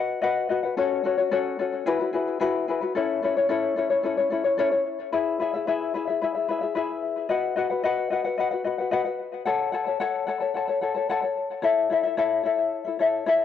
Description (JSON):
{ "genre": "pop", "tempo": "110 BPM", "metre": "4/4", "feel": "straight", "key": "unclear", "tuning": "A4 = 440 Hz", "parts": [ { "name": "tenor ukulele", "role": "solo", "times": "0.0-13.4 s", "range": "C#4 to A5", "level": "-23 LUFS", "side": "left 4 dB", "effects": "cassette tape, tape echo" } ], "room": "moderate spring reverb, RT60 1.4 s, studio ambience", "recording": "home recording on cassette", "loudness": "-23 LUFS", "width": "side -9 dB against mid", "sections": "0.0-2.9 A section; 2.9-11.6 B section; 11.6-13.4 A section", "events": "none", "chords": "0.0 B; 0.8 F#m; 1.9 Eadd9; 2.9 A; 5.1 E; 7.3 B; 9.5 F#m; 11.6 A", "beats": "0.23 | 0.77 1.32 1.86 2.40 | 2.95 3.49 4.03 4.58 | 5.12 5.66 6.21 6.75 | 7.29 7.84 8.38 8.93 | 9.47 10.01 10.55 11.10 | 11.64 12.18 12.72 13.27" }